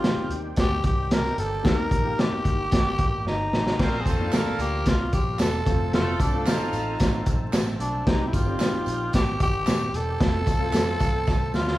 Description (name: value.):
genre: uptempo 1960s-style soul.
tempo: 112 BPM.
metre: 4/4.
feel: straight.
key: unclear.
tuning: A4 = 440 Hz.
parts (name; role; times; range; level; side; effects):
growling tenor saxophone; melody; 0.0-11.8 s; D4 to Bb4; -28 LUFS; equal; none.
warm concert grand piano; accompaniment; 0.0-11.8 s; Bb2 to A5; -33 LUFS; left 3 dB; none.
overdriven tonewheel organ; sustained chords; 0.0-11.8 s; D3 to A4; -38 LUFS; right 1 dB; none.
crunchy breakbeat drum kit; drums; 0.0-11.8 s; crash cymbal, hi-hat, kick drum, snare drum; -23 LUFS; equal; none.
vintage muted picked electric bass; bass; 0.2-11.8 s; Eb1 to F2; -30 LUFS; equal; none.
warm horn section; second line; 3.8-7.2 s; F3 to C5; -32 LUFS; right 1 dB; none.
tambourine and handclaps; percussion; 3.8-11.7 s; none; -41 LUFS; right 3 dB; none.
room: moderate large studio reverb, RT60 1.2 s.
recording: band playing live in one room, vinyl crackle.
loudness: -21 LUFS.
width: side -16 dB against mid.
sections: 0.0-11.8 A section.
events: drum fill 3.3-3.8, 11.3-11.8; grand piano fill 10.7-11.8.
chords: 0.0 Cm; 1.6 Eb; 3.8 Bb; 5.7 F; 8.1 Cm; 10.2 F.